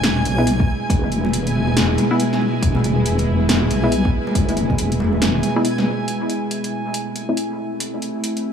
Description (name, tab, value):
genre	deep dubstep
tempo	139 BPM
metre	4/4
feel	swing 61% on 16ths, half-time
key	A harmonic minor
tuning	A4 = 439 Hz
part	bowed-like drone	sustained chords	0.0-8.5 s	B2 to E4	-22 LUFS	equal	built-in reverb, vintage 12-bit sampler grit
part	wobble bass	bass	0.0-5.4 s	E1 to B1	-20 LUFS	equal	chorus
part	deep house drum kit	drums	0.0-8.4 s	hi-hat, snare drum	-23 LUFS	equal	overdrive
part	backwards swelling texture	texture	0.0-6.1 s	G#5	-30 LUFS	right 2 dB	built-in reverb
part	congas	percussion	0.2-5.8 s	none	-25 LUFS	right 1 dB	dub echo
part	filtered dub chord stab	stabs	0.4-7.4 s	G#3 to E4	-26 LUFS	left 1 dB	chorus, dub echo
part	electronic kick drum	drums	0.6-4.8 s	none	-20 LUFS	equal	overdrive
room	light reverb, digital ambience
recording	dry, gritty hardware recording, small room ambience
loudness	-17 LUFS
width	side -8 dB against mid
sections	0.0-6.1 A section; 6.1-8.5 B section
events	break 5.6-6.1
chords	0.0 E; 6.1 Am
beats	0.04 0.47 | 0.90 1.33 1.76 2.19 | 2.62 3.06 3.49 3.92 | 4.35 4.78 5.21 5.65 | 6.08 6.51 6.94 7.37 | 7.80 8.24